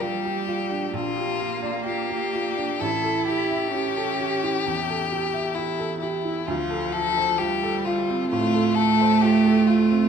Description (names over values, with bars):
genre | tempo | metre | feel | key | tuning
neoclassical piano and strings | 65 BPM | 4/4 | rubato | D minor | A4 = 440 Hz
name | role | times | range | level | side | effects
rich violin | melody | 0.0-10.1 s | E4 to A4 | -26 LUFS | left 8 dB | none
rich cello | second line | 0.0-10.1 s | F3 to E4 | -23 LUFS | right 4 dB | none
clear upright piano | accompaniment | 0.0-10.1 s | A1 to E5 | -27 LUFS | right 3 dB | none
room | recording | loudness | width
moderate recital hall reverb, RT60 1.3 s | minimal, uncompressed stereo recording | -21 LUFS | side -7 dB against mid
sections
0.0-10.1 A section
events
none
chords
0.0 Gm7/Bb; 2.8 A7; 6.5 Dm7